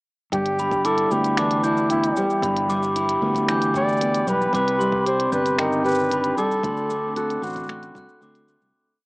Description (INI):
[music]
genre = folktronica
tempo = 114 BPM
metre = 4/4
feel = straight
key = G major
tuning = A4 = 440 Hz
[part]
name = warm flugelhorn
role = melody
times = 0.3-8.2 s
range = D4 to D5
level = -24 LUFS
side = equal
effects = cassette tape
[part]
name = glockenspiel with soft plastic mallets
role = second line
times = 0.3-8.7 s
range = G5 to G6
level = -25 LUFS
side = equal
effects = cassette tape, tape echo
[part]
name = nylon-string guitar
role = arpeggios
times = 0.3-9.1 s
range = G2 to G4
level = -25 LUFS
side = equal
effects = low-pass filter, cassette tape
[part]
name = fingered electric bass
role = bass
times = 0.3-8.7 s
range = G1 to D2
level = -28 LUFS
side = equal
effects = none
[part]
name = electronic kick drum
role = drums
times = 0.3-8.1 s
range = none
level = -34 LUFS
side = equal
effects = cassette tape
[part]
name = minimal click drum kit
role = drums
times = 0.3-8.7 s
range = finger snaps, hi-hat, shaker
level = -31 LUFS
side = equal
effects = cassette tape
[part]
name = warbly tape-like pad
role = sustained chords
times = 5.9-8.7 s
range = D3 to F#4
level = -35 LUFS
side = equal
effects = none
[sound]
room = moderate booth ambience, RT60 0.2 s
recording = home recording on cassette, small speaker sound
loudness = -19 LUFS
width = side -40 dB against mid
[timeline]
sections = 0.3-8.7 groove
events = fade-out 5.9-8.7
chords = 0.3 G6; 4.5 Cmadd9; 6.6 D7